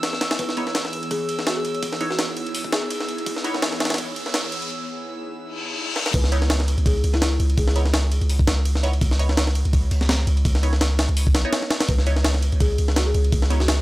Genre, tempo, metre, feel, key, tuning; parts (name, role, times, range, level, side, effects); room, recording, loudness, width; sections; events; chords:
drum and bass, jungle; 167 BPM; 4/4; swing 55% on 16ths; C# minor; A4 = 440 Hz
breakbeat sampler-style drum kit; drums; 0.0-13.8 s; crash cymbal, hi-hat, kick drum, ride cymbal, snare drum; -23 LUFS; equal; high-pass filter on cymbals, high-pass filter on kick, high-pass filter on snare, high-pass filter on hats
drifting glass-harmonics texture; texture; 0.0-4.7 s; E6; -33 LUFS; right 2 dB; chorus, built-in reverb
folk marimba with soft mallets; melody; 0.4-3.0, 6.1-7.9, 11.9-13.8 s; E4 to B4; -31 LUFS; left 2 dB; vintage 12-bit sampler grit, dub echo
riser and reverse cymbal; sound effects; 2.6-6.1 s; -32 LUFS; left 3 dB
filtered dub chord stab; stabs; 0.6-13.6 s; B3 to C#5; -31 LUFS; right 1 dB; phaser, cassette tape, dub echo
long sustained 808-style bass; bass; 6.1-13.8 s; B1 to C#2; -20 LUFS; equal
digital ambience; dry, gritty hardware recording, high-pass filter; -19 LUFS; side -18 dB against mid
0.0-6.1 A section; 6.1-13.8 B section
build-up 0.0-6.1; filter sweep on marimba 0.0-6.1; filter sweep 0.0-6.1; break 4.7-6.1; reverse cymbal 5.5-6.1; drum fill 6.0; drop 6.1-13.8
0.0 C#m9